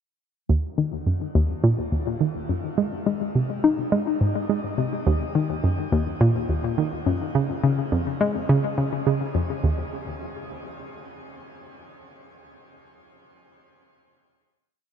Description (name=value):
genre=ambient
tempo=105 BPM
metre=4/4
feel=straight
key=Eb dorian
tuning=A4 = 438 Hz
part: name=hollow square pluck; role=solo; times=0.5-9.9 s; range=Eb2 to Eb4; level=-22 LUFS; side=equal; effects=chorus, ping-pong delay
room=moderate shimmer reverb, RT60 7.9 s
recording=none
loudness=-21 LUFS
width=side -8 dB against mid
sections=0.5-9.6 A section; 9.6-11.9 final note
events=none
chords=none